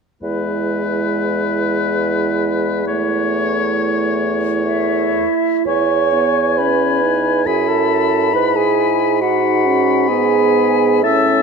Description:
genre	classical, slow romantic movement for wind quintet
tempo	67 BPM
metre	3/4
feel	uneven beats, rubato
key	E major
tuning	A4 = 442 Hz
part	warm oboe	second line	0.2-11.4 s	B4 to B5	-21 LUFS	left 7 dB	none
part	warm French horn	accompaniment	0.2-11.4 s	G#3 to E4	-23 LUFS	left 2 dB	none
part	warm clarinet	accompaniment	0.2-11.4 s	E4 to E5	-18 LUFS	right 9 dB	none
part	clear bassoon	bass	0.2-11.4 s	E2 to A2	-20 LUFS	right 1 dB	none
part	silver concert flute	melody	4.6-11.4 s	E5 to E6	-21 LUFS	left 13 dB	none
room	moderate concert hall reverb, RT60 2.1 s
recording	none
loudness	-14 LUFS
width	side -5 dB against mid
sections	0.2-5.7 A section; 5.7-11.4 B section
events	none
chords	0.2 E; 2.9 A/E; 5.7 E; 8.3 E/G#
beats	| 0.22 1.13 2.02 | 2.88 3.73 4.64 | 5.67 6.58 7.47 | 8.35 9.22 10.09 | 11.04

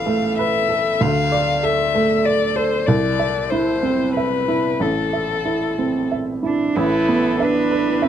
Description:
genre	neoclassical piano and strings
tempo	94 BPM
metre	3/4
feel	uneven beats, rubato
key	A minor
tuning	A4 = 440 Hz
part	rich violin	melody	0.0-8.1 s	A4 to F5	-22 LUFS	left 6 dB	plate reverb
part	clear upright piano	accompaniment	0.0-8.1 s	A1 to E5	-19 LUFS	right 2 dB	none
part	warm cello	second line	6.5-8.1 s	C4 to E4	-20 LUFS	right 4 dB	none
part	warm viola	accompaniment	6.8-8.1 s	B4	-25 LUFS	right 2 dB	none
part	warbly tape-like pad	sustained chords	6.8-8.1 s	E4 to B4	-30 LUFS	right 1 dB	none
room	moderate studio reverb, RT60 0.8 s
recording	dark, warm production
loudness	-17 LUFS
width	side -9 dB against mid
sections	0.0-6.8 A section; 6.8-8.1 A section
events	none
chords	0.0 Asus2; 1.0 Dm; 2.9 C; 4.8 Am; 6.8 Asus2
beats	0.38 | 1.01 1.63 2.25 | 2.87 3.50 4.14 | 4.80 5.46 6.11 | 6.76 7.39 8.02

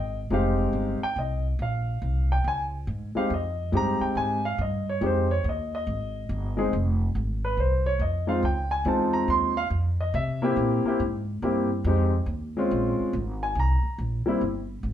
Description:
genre	jazz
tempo	140 BPM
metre	4/4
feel	swing 65% on 8ths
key	F minor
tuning	A4 = 439 Hz
part	warm grand piano	melody	0.0-14.4 s	G3 to C6	-26 LUFS	left 1 dB	none
part	upright bass	bass	0.0-14.9 s	F1 to C3	-27 LUFS	equal	none
room	wet club reverb, RT60 0.7 s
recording	heard from further back in the room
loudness	-24 LUFS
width	side -10 dB against mid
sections	0.0-14.9 A section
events	none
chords	0.0 Fm9; 1.6 Bbm9; 3.3 Fm9; 8.4 Dbmaj7; 10.1 C7; 11.9 Fm9; 12.7 Bbm9; 13.6 C7(no3)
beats	0.32 0.75 1.18 | 1.60 2.03 2.46 2.88 | 3.31 3.73 4.16 4.59 | 5.01 5.44 5.87 6.29 | 6.72 7.15 7.58 8.00 | 8.43 8.86 9.29 9.71 | 10.14 10.57 11.00 11.43 | 11.85 12.28 12.71 13.14 | 13.57 14.00 14.43 14.85

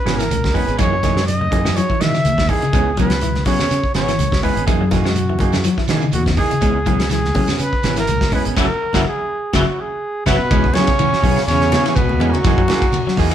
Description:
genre	afrobeat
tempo	124 BPM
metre	4/4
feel	swing 55% on 16ths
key	C# dorian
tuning	A4 = 440 Hz
part	breathy trumpet	melody	0.0-13.3 s	F#4 to E5	-21 LUFS	right 1 dB	none
part	semi-hollow electric guitar	stabs	0.1-13.3 s	E3 to G#4	-24 LUFS	right 6 dB	none
part	fingered electric bass	bass	0.1-13.3 s	F#1 to F#3	-21 LUFS	equal	none
part	warm soul drum kit	drums	0.1-13.3 s	hi-hat, kick drum, ride cymbal, snare drum	-20 LUFS	equal	none
part	claves	percussion	0.1-13.3 s	none	-37 LUFS	left 5 dB	none
part	shekere	percussion	0.1-13.3 s	none	-28 LUFS	right 1 dB	none
part	electric guitar at the edge of break-up	arpeggios	0.2-13.3 s	C#3 to G#3	-23 LUFS	left 4 dB	spring reverb
part	congas	percussion	0.3-13.3 s	none	-27 LUFS	left 2 dB	none
part	brilliant trombone section	second line	10.3-13.3 s	F#2 to C#3	-24 LUFS	equal	none
part	trombone with metal mute	second line	10.3-13.3 s	F#3 to C#4	-26 LUFS	right 2 dB	none
room	moderate studio reverb, RT60 1.0 s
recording	band playing live in one room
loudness	-14 LUFS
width	side -10 dB against mid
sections	0.0-10.5 A section; 10.5-13.3 B section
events	band accent 8.6-10.5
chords	0.0 C#m7; 0.8 F#13; 2.7 C#m7; 4.7 F#13; 6.6 C#m7; 8.6 F#9; 10.5 C#m7; 12.4 F#13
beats	0.31 | 0.80 1.28 1.77 2.25 | 2.74 3.22 3.71 4.19 | 4.68 5.17 5.65 6.14 | 6.62 7.11 7.59 8.08 | 8.56 9.05 9.54 10.02 | 10.51 10.99 11.48 11.96 | 12.45 12.93

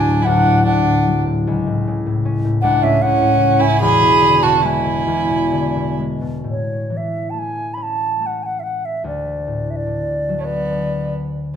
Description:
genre	celtic folk, Celtic slow air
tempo	65-78 BPM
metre	3/4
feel	rubato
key	A major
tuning	A4 = 440 Hz
part	wooden flute	melody	0.0-11.1 s	C#5 to B5	-18 LUFS	equal	none
part	rich fiddle	second line	0.0-6.0, 10.4-11.1 s	A3 to G#4	-21 LUFS	right 6 dB	none
part	concert harp	accompaniment	0.0-11.6 s	D1 to C#4	-19 LUFS	left 2 dB	none
room	moderate recital hall reverb, RT60 1.6 s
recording	minimal, uncompressed stereo recording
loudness	-15 LUFS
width	side -8 dB against mid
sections	0.0-6.5 A section; 6.5-11.6 B section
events	none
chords	0.0 D; 1.5 A/C#; 3.8 E7; 6.5 A; 9.1 D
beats	0.67 | 1.46 2.25 3.03 | 3.84 4.67 5.55 | 6.47 7.36 8.22 | 9.05 9.88 10.71 | 11.55

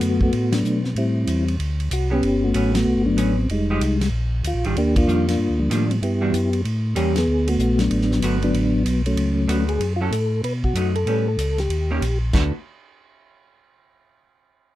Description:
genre	soul jazz organ trio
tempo	190 BPM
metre	4/4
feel	swing 63% on 8ths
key	D major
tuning	A4 = 440 Hz
part	percussive tonewheel organ	melody	0.0-12.5 s	F3 to B4	-21 LUFS	left 1 dB	slow rotary speaker, chorus vibrato
part	vintage hollow-body jazz guitar	accompaniment	0.0-12.5 s	D3 to A4	-26 LUFS	right 2 dB	none
part	mellow tonewheel organ	bass	0.0-12.5 s	F1 to B2	-22 LUFS	equal	overdrive, chorus vibrato, slow rotary speaker
part	warm soul drum kit	drums	0.0-12.4 s	china cymbal, hi-hat, kick drum, ride cymbal, snare drum	-29 LUFS	equal	none
room	little or no reverb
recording	close, detailed microphones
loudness	-18 LUFS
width	side -14 dB against mid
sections	0.0-9.8 A section; 9.8-12.3 B section; 12.3-13.6 C section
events	band accent 0.5, 2.7, 4.9, 7.1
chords	0.0 D6; 0.9 Am7; 1.6 D7; 2.2 Gmaj9#11; 3.5 Fm9; 4.1 Bb7; 4.7 Ebmaj9; 6.0 Em9; 6.6 A7b9; 7.3 D6; 9.8 F#m7; 10.4 B7; 11.1 A9; 11.7 Eb7; 12.3 D6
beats	0.00 0.32 0.63 | 0.95 1.27 1.58 1.90 | 2.22 2.53 2.85 3.17 | 3.48 3.80 4.12 4.43 | 4.75 5.06 5.38 5.70 | 6.01 6.33 6.64 6.96 | 7.27 7.59 7.90 8.22 | 8.53 8.85 9.16 9.48 | 9.80 10.11 10.43 10.75 | 11.06 11.38 11.70 12.02 | 12.33

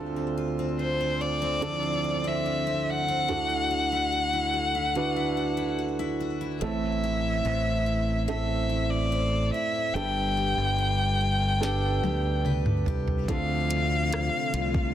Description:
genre	pop ballad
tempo	72 BPM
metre	4/4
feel	straight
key	unclear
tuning	A4 = 440 Hz
part	dark baby grand piano	accompaniment	0.0-14.9 s	D2 to B4	-30 LUFS	right 4 dB	none
part	picked steel-string acoustic guitar	arpeggios	0.0-14.9 s	A2 to C5	-36 LUFS	left 6 dB	digital delay
part	rich violin	melody	0.8-14.9 s	C5 to G5	-28 LUFS	left 1 dB	none
part	modern bright fingered electric bass	bass	6.6-14.9 s	G1 to D2	-28 LUFS	equal	none
part	smooth R&B drum kit	drums	11.6-14.9 s	hi-hat, kick drum, rim click, snare drum, toms	-30 LUFS	equal	soft clipping on snare
part	lush unison pad	sustained chords	13.3-14.9 s	C3 to F4	-33 LUFS	left 2 dB	chorus
room	light reverb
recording	dense, heavily limited modern master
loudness	-24 LUFS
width	side -11 dB against mid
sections	0.0-6.6 A section; 6.6-14.9 B section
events	drum fill 11.6-13.3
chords	0.0 Dm7; 3.3 Dadd9; 6.6 Am; 10.0 Gadd9; 13.3 Dm7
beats	0.78 1.62 2.45 | 3.28 4.12 4.95 5.78 | 6.62 7.45 8.28 9.12 | 9.95 10.78 11.62 12.45 | 13.28 14.12

